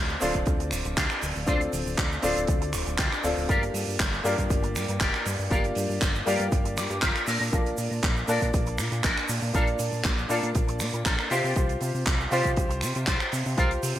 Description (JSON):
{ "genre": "nu-disco, nu disco", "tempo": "119 BPM", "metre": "4/4", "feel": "straight", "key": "D minor", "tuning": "A4 = 440 Hz", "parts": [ { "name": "clear grand piano", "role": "accompaniment", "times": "0.0-14.0 s", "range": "Bb3 to A5", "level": "-30 LUFS", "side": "left 1 dB", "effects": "sidechain pumping, digital delay" }, { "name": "fat analog bass", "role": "bass", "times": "0.0-14.0 s", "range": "D1 to C3", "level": "-30 LUFS", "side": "equal", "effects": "none" }, { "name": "tube shaker", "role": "percussion", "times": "0.1-13.9 s", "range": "none", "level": "-40 LUFS", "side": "right 4 dB", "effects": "none" }, { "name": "electric guitar with an envelope filter", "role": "riff", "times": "0.2-14.0 s", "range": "D4 to A5", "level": "-32 LUFS", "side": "left 1 dB", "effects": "ensemble chorus, digital delay" }, { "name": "damped 70s drum kit", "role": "drums", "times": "0.2-14.0 s", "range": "finger snaps, handclaps, hi-hat", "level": "-30 LUFS", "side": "right 1 dB", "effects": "studio reverb, gated reverb" }, { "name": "electronic kick drum", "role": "drums", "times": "0.3-13.7 s", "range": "none", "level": "-26 LUFS", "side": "equal", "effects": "studio reverb" } ], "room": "light reverb, small room ambience", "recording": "bright 1980s-style digital production", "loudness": "-23 LUFS", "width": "side -12 dB against mid", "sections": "0.0-14.0 A section", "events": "clean electric guitar fill 6.5-7.5", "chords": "0.0 Dm7; 3.5 Gm7; 7.3 Bbmaj7; 11.3 Csus4" }